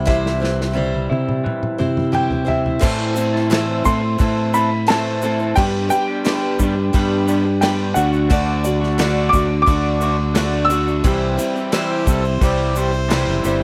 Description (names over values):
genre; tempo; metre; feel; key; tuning
folk rock and heartland rock; 88 BPM; 4/4; straight; A dorian; A4 = 440 Hz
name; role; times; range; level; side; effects
dark grand piano; melody; 0.0-13.0 s; E5 to E6; -24 LUFS; equal; none
picked steel-string acoustic guitar; accompaniment; 0.0-13.6 s; A2 to D5; -26 LUFS; equal; none
electric guitar through a small old amp; riff; 0.0-13.6 s; G2 to A4; -25 LUFS; equal; spring reverb
fingered electric bass; bass; 0.0-13.6 s; F#1 to C3; -23 LUFS; equal; none
unplugged drum kit; drums; 0.1-13.6 s; crash cymbal, kick drum, snare drum, toms; -26 LUFS; equal; none
tube shaker; percussion; 2.8-13.6 s; none; -38 LUFS; equal; none
warm harmonica; second line; 11.8-13.6 s; E4 to D5; -28 LUFS; equal; none
room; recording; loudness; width
little or no reverb; dry, close 1970s-style studio recording; -18 LUFS; mono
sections
0.0-2.8 A section; 2.8-13.6 B section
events
drum fill 0.1-2.8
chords
0.0 C; 2.8 Am; 5.6 G; 8.0 D; 11.0 C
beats
| 0.08 0.77 1.45 2.14 | 2.83 3.51 4.20 4.88 | 5.57 6.25 6.93 7.62 | 8.30 8.99 9.67 10.36 | 11.05 11.73 12.42 13.11